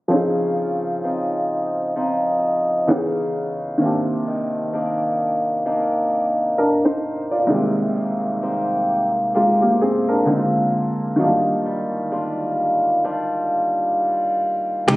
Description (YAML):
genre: contemporary R&B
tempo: 65 BPM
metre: 4/4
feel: swing 58% on 16ths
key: Eb major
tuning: A4 = 440 Hz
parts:
  - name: felt-muted upright piano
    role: accompaniment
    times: 0.1-15.0 s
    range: C2 to D5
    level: -21 LUFS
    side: equal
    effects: none
  - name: picked swing-style acoustic guitar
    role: arpeggios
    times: 0.1-15.0 s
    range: Bb2 to G4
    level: -21 LUFS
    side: equal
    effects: none
  - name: chorused pulse-width pad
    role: sustained chords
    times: 14.9-15.0 s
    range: C3 to Eb4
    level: -20 LUFS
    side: equal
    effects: sidechain pumping
  - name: vintage muted fingered electric bass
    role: bass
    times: 14.9-15.0 s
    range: Db2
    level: -19 LUFS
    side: equal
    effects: none
  - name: trap drum kit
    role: drums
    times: 14.9-15.0 s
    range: hi-hat, kick drum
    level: -18 LUFS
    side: equal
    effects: none
  - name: impact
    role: sound effects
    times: 14.9-15.0 s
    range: none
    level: barely audible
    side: none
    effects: none
room: light reverb, digital ambience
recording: recorded on a phone in the room, club reverb, compression, low-pass filter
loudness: -18 LUFS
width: side -19 dB against mid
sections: 0.1-14.9 A section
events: none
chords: 0.1 Dbmaj9; 2.9 Dbm9; 3.8 Cm9; 7.5 Abmaj9/C; 10.3 Bb7; 11.2 Ebmaj9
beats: | 0.11 1.04 1.96 2.88 | 3.81 4.73 5.65 6.58 | 7.50 8.42 9.34 10.27 | 11.19 12.11 13.04 13.96 | 14.88